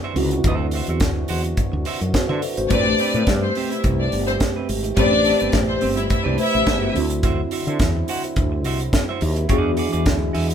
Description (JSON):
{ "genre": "disco", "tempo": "106 BPM", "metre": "4/4", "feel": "straight", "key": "A dorian", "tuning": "A4 = 441 Hz", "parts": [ { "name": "clean electric guitar", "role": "accompaniment", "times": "0.0-10.5 s", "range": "C4 to F#5", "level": "-29 LUFS", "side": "right 6 dB", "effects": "none" }, { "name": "mellow tine electric piano", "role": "accompaniment", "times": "0.0-10.5 s", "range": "D3 to E5", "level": "-25 LUFS", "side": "left 2 dB", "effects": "medium stereo tremolo" }, { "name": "warm French horn section", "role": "sustained chords", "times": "0.0-10.5 s", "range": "B2 to G4", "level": "-30 LUFS", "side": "right 4 dB", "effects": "none" }, { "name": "woody fretless electric bass", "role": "bass", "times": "0.2-10.5 s", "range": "G1 to D3", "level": "-23 LUFS", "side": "equal", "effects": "none" }, { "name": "tight funk drum kit", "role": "drums", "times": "0.2-10.5 s", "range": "hi-hat, kick drum, snare drum", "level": "-23 LUFS", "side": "equal", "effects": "none" }, { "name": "rich studio string section", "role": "second line", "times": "2.7-6.9 s", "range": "C4 to E5", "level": "-21 LUFS", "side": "left 3 dB", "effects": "none" } ], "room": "light reverb", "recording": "band playing live in one room", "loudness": "-18 LUFS", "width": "side -8 dB against mid", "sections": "0.0-10.5 A section", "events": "none", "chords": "0.0 D9; 2.7 Am9; 7.0 D9; 9.5 E9", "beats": "| 0.44 1.01 1.58 2.14 | 2.71 3.27 3.84 4.41 | 4.97 5.54 6.11 6.67 | 7.24 7.80 8.37 8.93 | 9.50 10.07" }